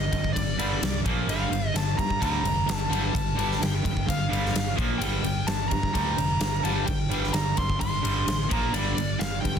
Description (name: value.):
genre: hard rock.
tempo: 129 BPM.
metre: 4/4.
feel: straight.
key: G minor.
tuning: A4 = 441 Hz.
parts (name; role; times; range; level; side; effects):
smooth overdriven lead guitar; melody; 0.0-9.6 s; D5 to C6; -30 LUFS; right 1 dB; slapback echo.
cranked stack guitar; riff; 0.0-9.6 s; G2 to Bb3; -32 LUFS; left 12 dB; overdrive, phaser.
cranked stack guitar; riff; 0.0-9.6 s; G2 to Bb3; -31 LUFS; right 9 dB; overdrive, harmonic tremolo.
picked electric bass; bass; 0.0-9.6 s; F1 to G2; -30 LUFS; equal; none.
huge arena drum kit; drums; 0.1-9.6 s; kick drum, ride cymbal, snare drum; -29 LUFS; equal; none.
room: light reverb, studio reverb.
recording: dense, heavily limited modern master.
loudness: -23 LUFS.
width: side -8 dB against mid.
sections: 0.0-9.6 A section.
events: none.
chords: 0.0 G5; 1.0 Bb5; 1.3 Gm; 4.8 Bb5; 5.0 Gm; 8.5 Bb5; 8.7 G5.